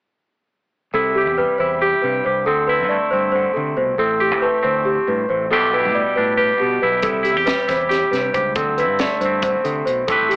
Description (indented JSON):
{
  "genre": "math rock and midwest emo",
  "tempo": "276 BPM (eighths)",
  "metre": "7/8",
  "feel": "straight",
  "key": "C major",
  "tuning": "A4 = 440 Hz",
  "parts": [
    { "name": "twangy electric guitar", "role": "accompaniment", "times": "0.9-10.4 s", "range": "G2 to B4", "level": "-19 LUFS", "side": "right 1 dB", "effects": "none" },
    { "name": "celesta", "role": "arpeggios", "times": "0.9-10.4 s", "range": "G4 to D5", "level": "-19 LUFS", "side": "left 1 dB", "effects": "none" },
    { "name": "growling fingered electric bass", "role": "bass", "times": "0.9-10.4 s", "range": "A1 to D3", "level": "-27 LUFS", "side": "equal", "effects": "overdrive" },
    { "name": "crisp fusion drum kit", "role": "drums", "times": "7.0-10.4 s", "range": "hi-hat, kick drum, snare drum", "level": "-26 LUFS", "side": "equal", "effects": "none" }
  ],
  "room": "moderate small room reverb, RT60 0.5 s",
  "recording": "AM radio sound",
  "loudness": "-16 LUFS",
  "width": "side -26 dB against mid",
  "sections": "0.9-10.4 A section",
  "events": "none",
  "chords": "0.9 C6; 2.5 Dsus2; 4.0 Am9; 5.5 Em7/B; 7.0 C6; 8.6 Dsus2"
}